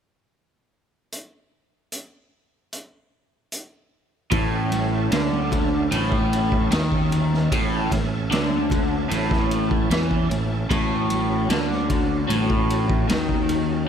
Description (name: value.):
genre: psychedelic rock.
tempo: 75 BPM.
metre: 4/4.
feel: straight.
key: A major.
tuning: A4 = 440 Hz.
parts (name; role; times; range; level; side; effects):
raw garage drum kit; drums; 1.1-13.7 s; hi-hat, kick drum, ride cymbal, snare drum; -25 LUFS; equal; none.
bright tonewheel organ; sustained chords; 4.3-13.9 s; C#4 to A5; -31 LUFS; right 3 dB; slow rotary speaker, overdrive, chorus vibrato.
overdriven electric guitar; riff; 4.3-13.9 s; A2 to E3; -22 LUFS; left 1 dB; phaser.
growling fingered electric bass; bass; 4.3-13.8 s; A1 to E2; -26 LUFS; equal; overdrive.
congas; percussion; 4.7-13.7 s; none; -37 LUFS; right 3 dB; none.
room: moderate plate reverb, RT60 2.9 s.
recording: dreamy mix soaked in reverb.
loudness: -19 LUFS.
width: side -8 dB against mid.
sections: 1.1-4.3 A section; 4.3-13.9 B section.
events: none.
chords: 1.1 N.C.; 4.3 A.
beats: | 1.11 1.92 2.72 3.52 | 4.32 5.12 5.91 6.71 | 7.51 8.31 9.11 9.90 | 10.70 11.50 12.29 13.09 | 13.88.